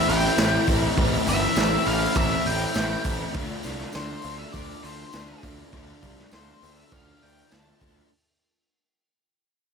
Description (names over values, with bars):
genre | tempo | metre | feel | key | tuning
rock, shoegaze and dream pop | 101 BPM | 4/4 | straight | unclear | A4 = 439 Hz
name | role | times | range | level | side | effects
octave-fuzz lead guitar | melody | 0.0-7.9 s | C5 to A5 | -29 LUFS | left 1 dB | distortion, digital delay
overdriven semi-hollow guitar | riff | 0.0-8.1 s | A2 to F4 | -29 LUFS | left 12 dB | analog chorus
overdriven semi-hollow guitar | riff | 0.0-8.1 s | A2 to F4 | -30 LUFS | right 14 dB | reverse reverb
fuzz picked electric bass | bass | 0.1-8.0 s | G1 to D2 | -29 LUFS | right 1 dB | overdrive
raw garage drum kit | drums | 0.1-8.0 s | hi-hat, kick drum, snare drum | -28 LUFS | right 1 dB | none
tambourine | percussion | 0.4-8.0 s | none | -41 LUFS | right 6 dB | none
room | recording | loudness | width
light reverb, small room ambience | none | -21 LUFS | side -6 dB against mid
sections
0.0-8.1 A section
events
fade-out 0.0-8.1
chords
0.0 Am7; 3.4 Dm7